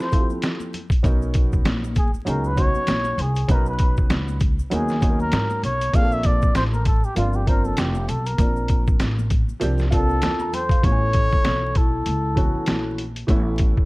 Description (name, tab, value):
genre	hip hop, jazz-hop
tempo	98 BPM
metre	4/4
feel	swing 58% on 16ths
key	unclear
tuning	A4 = 440 Hz
part	trumpet with cup mute	melody	0.0-13.0 s	F4 to F5	-25 LUFS	equal	none
part	warm upright piano	accompaniment	0.0-13.9 s	E3 to Bb5	-28 LUFS	right 1 dB	none
part	lo-fi sampler-style drum kit	drums	0.0-13.9 s	hi-hat, kick drum, snare drum	-20 LUFS	equal	none
part	tube shaker and congas	percussion	0.1-10.8 s	none	-38 LUFS	left 6 dB	none
part	upright bass	bass	1.0-13.8 s	F1 to G#2	-24 LUFS	equal	none
part	vibraphone with soft mallets	second line	9.9-13.0 s	E4 to A4	-31 LUFS	left 4 dB	tape echo
room	small room ambience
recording	dark, warm production, vinyl crackle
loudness	-18 LUFS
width	side -22 dB against mid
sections	0.0-10.8 A section; 10.8-13.9 B section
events	break 0.0-1.0; muted trumpet solo 0.0-10.8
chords	0.0 Fmaj9; 1.0 Bmaj9; 5.9 Bbmaj9; 10.8 Amaj9